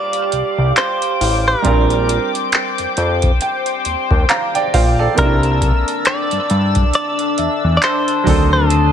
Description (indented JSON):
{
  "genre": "contemporary R&B",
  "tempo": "68 BPM",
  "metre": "4/4",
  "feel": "swing 58% on 16ths",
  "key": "Bb major",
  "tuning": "A4 = 439 Hz",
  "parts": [
    { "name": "direct-recorded clean electric guitar", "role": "melody", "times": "0.0-8.9 s", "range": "A4 to D5", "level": "-19 LUFS", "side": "equal", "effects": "digital delay" },
    { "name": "clear baby grand piano", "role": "accompaniment", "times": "0.0-8.9 s", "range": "Eb3 to Bb5", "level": "-20 LUFS", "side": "right 6 dB", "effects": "none" },
    { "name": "chorused pulse-width pad", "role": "sustained chords", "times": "0.0-8.9 s", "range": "D4 to E6", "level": "-20 LUFS", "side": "left 2 dB", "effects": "none" },
    { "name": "felt-muted upright piano", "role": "texture", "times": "0.0-8.9 s", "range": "C5 to Bb5", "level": "-30 LUFS", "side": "left 2 dB", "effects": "digital delay" },
    { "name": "booming analog drum machine", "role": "drums", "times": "0.1-8.9 s", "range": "handclaps, hi-hat, kick drum", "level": "-17 LUFS", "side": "equal", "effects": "none" },
    { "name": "fat analog bass", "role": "bass", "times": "0.3-8.9 s", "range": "A1 to G2", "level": "-17 LUFS", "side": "left 1 dB", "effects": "none" }
  ],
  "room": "little or no reverb",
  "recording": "none",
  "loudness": "-13 LUFS",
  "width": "side -8 dB against mid",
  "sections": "0.0-8.9 A section",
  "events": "none",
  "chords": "0.0 Gm7; 1.6 Bb69; 5.2 C13; 8.3 D7b9",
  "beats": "0.76 | 1.65 2.53 3.41 4.29 | 5.18 6.06 6.94 7.82 | 8.71"
}